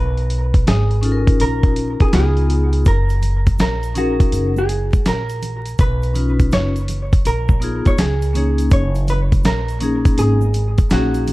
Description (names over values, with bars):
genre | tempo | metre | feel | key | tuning
hip hop, jazz-hop | 82 BPM | 4/4 | swing 65% on 16ths | F# major | A4 = 440 Hz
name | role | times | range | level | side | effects
vintage hollow-body jazz guitar | melody | 0.0-11.3 s | F#4 to C#5 | -24 LUFS | right 2 dB | analog delay
upright bass | bass | 0.0-11.3 s | F#1 to C#2 | -18 LUFS | equal | none
dusty soul sampler-style drum kit | drums | 0.2-11.3 s | hi-hat, kick drum, snare drum | -16 LUFS | equal | none
vibraphone with medium hard mallets | accompaniment | 1.0-11.3 s | A#3 to B4 | -21 LUFS | left 2 dB | none
egg shaker and congas | percussion | 2.9-11.3 s | none | -33 LUFS | right 5 dB | none
room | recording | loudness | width
small room reverb | dark, warm production, vinyl crackle | -14 LUFS | side -19 dB against mid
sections
0.0-11.3 A section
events
none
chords
0.0 Bmaj9#11; 2.1 C#7; 2.9 F#69; 5.8 Bmaj9#11; 8.0 C#5; 8.7 F#69